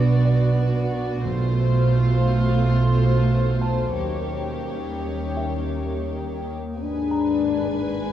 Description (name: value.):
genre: cinematic, suspense film score.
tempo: 88 BPM.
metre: 4/4.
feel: straight.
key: unclear.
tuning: A4 = 439 Hz.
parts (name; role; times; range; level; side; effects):
warm symphonic violin section; melody; 0.0-8.1 s; C5 to Ab5; -34 LUFS; left 4 dB; none.
warm symphonic violin section; second line; 0.0-8.1 s; F4 to Cb5; -34 LUFS; right 1 dB; none.
dark symphonic viola section; accompaniment; 0.0-8.1 s; A3 to Cb5; -33 LUFS; equal; none.
dark French horn section; sustained chords; 0.0-8.1 s; G3 to F4; -28 LUFS; left 5 dB; none.
glass harmonica; sustained chords; 0.0-8.1 s; Ab4 to Ab5; -34 LUFS; left 3 dB; none.
warm studio cello section; bass; 0.0-8.1 s; Ab2 to D#3; -24 LUFS; right 2 dB; none.
warm symphonic double bass section; bass; 0.0-8.1 s; Ab1 to D#2; -26 LUFS; right 3 dB; none.
organ-like drone; drone; 0.0-8.1 s; Ab1 to D#2; -30 LUFS; equal; ensemble chorus, built-in reverb.
music box; texture; 0.3-8.1 s; E4 to Bb5; -38 LUFS; right 2 dB; none.
timpani; percussion; 1.2-2.2 s; B2; -29 LUFS; right 2 dB; none.
room: wet recital hall reverb, RT60 1.6 s.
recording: worn, warbling old tape, cassette tape, warbly pitch drift, small room ambience.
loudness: -20 LUFS.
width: side -11 dB against mid.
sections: 0.0-6.8 A section; 6.8-8.1 B section.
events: none.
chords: 0.0 Bm; 1.2 F/B; 4.0 D#7; 6.8 Abm.